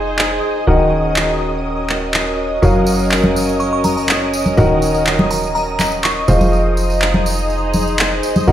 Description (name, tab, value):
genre	piano house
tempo	123 BPM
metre	4/4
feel	straight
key	unclear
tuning	A4 = 440 Hz
part	analog string pad	sustained chords	0.0-8.5 s	Eb5 to Eb6	-22 LUFS	right 1 dB	ensemble chorus
part	clear grand piano	riff	0.0-8.5 s	Eb3 to Gb5	-19 LUFS	equal	low-pass filter
part	plucky analog bass	bass	0.0-8.5 s	Eb1 to Gb1	-20 LUFS	equal	none
part	rich chamber string section	texture	0.0-8.5 s	Db4 to C5	-21 LUFS	equal	none
part	electronic handclaps	drums	0.2-8.1 s	none	-18 LUFS	equal	none
part	tambourine and congas	percussion	2.6-8.5 s	none	-21 LUFS	equal	none
part	glassy synth bell	melody	3.6-6.3 s	Bb5 to Db6	-22 LUFS	equal	chorus, digital delay
room	moderate plate reverb, RT60 1.6 s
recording	played on a big sound system in a bare room, stone room reverb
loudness	-13 LUFS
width	side -11 dB against mid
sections	0.0-8.5 A section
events	none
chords	0.0 Fm7; 0.7 Ebm; 2.6 Gbmaj7; 4.6 Ebm; 6.3 Fm7